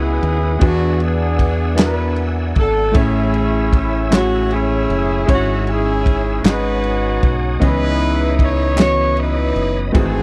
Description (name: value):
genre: slow gospel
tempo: 52 BPM (dotted quarters)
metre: 6/8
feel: straight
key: C# minor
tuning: A4 = 436 Hz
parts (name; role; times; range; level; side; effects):
- warm horn section; melody; 0.0-10.2 s; B3 to C#5; -22 LUFS; equal; none
- clear baby grand piano; accompaniment; 0.0-10.2 s; G#2 to D#5; -24 LUFS; equal; none
- tonewheel organ; sustained chords; 0.0-10.2 s; E4 to E6; -32 LUFS; equal; slow rotary speaker, overdrive, chorus vibrato
- deep dub fingered electric bass; bass; 0.0-10.2 s; F#1 to E2; -22 LUFS; equal; none
- warm soul drum kit; drums; 0.2-10.1 s; kick drum, ride cymbal, snare drum; -17 LUFS; equal; none
- group handclap; percussion; 1.8-9.1 s; none; -29 LUFS; equal; none
room: small room ambience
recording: none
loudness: -17 LUFS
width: mono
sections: 0.0-10.2 A section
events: none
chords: 0.0 C#m11; 0.6 E9; 3.0 Amaj7; 5.3 C#m/G#; 6.4 G#7sus4; 7.6 C#m9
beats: | 0.62 1.78 | 2.95 4.12 | 5.28 6.45 | 7.61 8.77 | 9.94